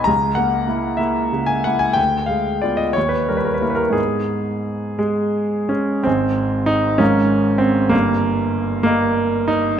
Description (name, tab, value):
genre	classical, romantic character piece for solo piano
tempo	56-66 BPM (dotted quarters)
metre	6/8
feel	rubato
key	G# minor, Ab major from 6.1 s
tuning	A4 = 440 Hz
part	clear grand piano	solo	0.0-9.8 s	G1 to B5	-16 LUFS	equal	none
room	moderate scoring stage reverb, RT60 1.9 s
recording	none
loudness	-16 LUFS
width	side -9 dB against mid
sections	0.0-6.1 A section; 6.1-9.8 B section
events	none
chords	0.1 A#dim/C#; 2.0 Ddim7; 3.0 D#; 4.0 G#m; 6.1 Ab; 7.0 Bbm7/Ab; 7.9 Eb/G